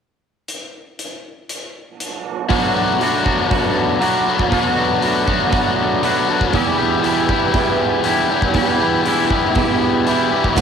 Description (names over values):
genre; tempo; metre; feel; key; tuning
rock, shoegaze and dream pop; 119 BPM; 4/4; straight; B minor; A4 = 441 Hz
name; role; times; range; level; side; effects
huge arena drum kit; drums; 0.5-10.6 s; hi-hat, kick drum; -24 LUFS; equal; none
biting overdriven guitar; riff; 2.5-10.6 s; B2 to G4; -17 LUFS; left 7 dB; wide subtle chorus, cassette tape
twangy electric guitar; riff; 2.5-10.6 s; E2 to F#4; -19 LUFS; right 10 dB; reverse reverb, cassette tape
picked twelve-string acoustic guitar; arpeggios; 10.6 s; F#4; -15 LUFS; right 6 dB; lush chorus, cassette tape
room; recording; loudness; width
light reverb, studio reverb; home recording on cassette; -14 LUFS; side -7 dB against mid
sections
0.5-2.5 A section; 2.5-10.6 B section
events
none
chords
0.5 N.C.; 2.5 Bm7; 6.5 Em7